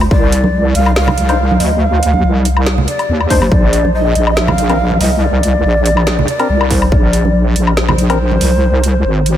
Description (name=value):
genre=deep dubstep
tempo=141 BPM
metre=4/4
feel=swing 53% on 16ths, half-time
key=unclear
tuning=A4 = 439 Hz
part: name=wobble bass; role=bass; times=0.0-9.4 s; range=Ab1 to Eb2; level=-13 LUFS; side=equal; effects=chorus
part: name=garage drum kit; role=drums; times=0.0-9.4 s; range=hi-hat, snare drum, woodblock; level=-20 LUFS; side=left 1 dB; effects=overdrive
part: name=breathy long shakuhachi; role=melody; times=0.1-9.4 s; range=C5 to F5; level=-17 LUFS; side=equal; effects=dub echo
part: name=electronic kick drum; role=drums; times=0.1-0.2, 3.3-3.6, 6.7-7.0 s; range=none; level=-13 LUFS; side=equal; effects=none
part: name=congas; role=percussion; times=0.4-8.4 s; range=none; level=-20 LUFS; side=right 2 dB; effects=none
part: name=percussive organ stab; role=stabs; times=1.3-8.2 s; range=C4 to C5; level=-23 LUFS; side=left 2 dB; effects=chorus, dub echo
room=light reverb, digital ambience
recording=none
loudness=-10 LUFS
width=side -11 dB against mid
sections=0.0-9.4 A section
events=none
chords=0.0 Cmadd9; 3.5 Bbadd9